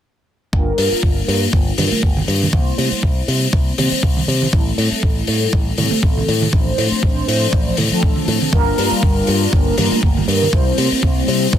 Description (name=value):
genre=nu-disco, nu disco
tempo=120 BPM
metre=4/4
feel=swing 55% on 16ths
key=G dorian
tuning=A4 = 440 Hz
part: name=mellow synth brass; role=accompaniment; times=0.5-11.6 s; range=F3 to C5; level=-20 LUFS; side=equal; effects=chorus, phaser, tape echo
part: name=picked electric bass with an envelope filter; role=bass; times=0.5-11.6 s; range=G1 to C3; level=-19 LUFS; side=equal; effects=none
part: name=electronic kick drum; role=drums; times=0.5-11.6 s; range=none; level=-16 LUFS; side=equal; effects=small room ambience
part: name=hi-hat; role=drums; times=0.8-11.4 s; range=none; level=-22 LUFS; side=left 6 dB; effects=small room ambience
part: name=congas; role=percussion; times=1.8-10.9 s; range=none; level=-23 LUFS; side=right 4 dB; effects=none
room=studio reverb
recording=dense, heavily limited modern master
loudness=-14 LUFS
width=side -10 dB against mid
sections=0.5-11.6 A section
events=filter sweep on analog polysynth 0.5-11.6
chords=0.5 Gm7; 2.5 C7; 4.5 Am7; 6.5 Dm7/A; 8.5 Gm7; 10.5 C7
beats=| 0.53 1.03 1.53 2.03 | 2.53 3.03 3.53 4.03 | 4.53 5.03 5.53 6.03 | 6.53 7.03 7.53 8.03 | 8.53 9.03 9.53 10.03 | 10.53 11.03 11.53